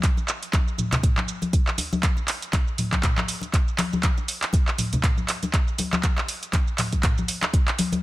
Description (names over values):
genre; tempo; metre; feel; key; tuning
house; 120 BPM; 4/4; swing 57% on 16ths; none; none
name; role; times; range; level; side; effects
afro-pop drum kit; drums; 0.0-8.0 s; handclaps, hi-hat, shaker, toms; -26 LUFS; right 1 dB; none
electronic kick drum; drums; 0.0-7.6 s; none; -22 LUFS; equal; none
congas; percussion; 0.2-8.0 s; none; -28 LUFS; left 3 dB; none
room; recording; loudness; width
little or no reverb; none; -21 LUFS; side -17 dB against mid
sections
0.0-8.0 A section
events
none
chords
none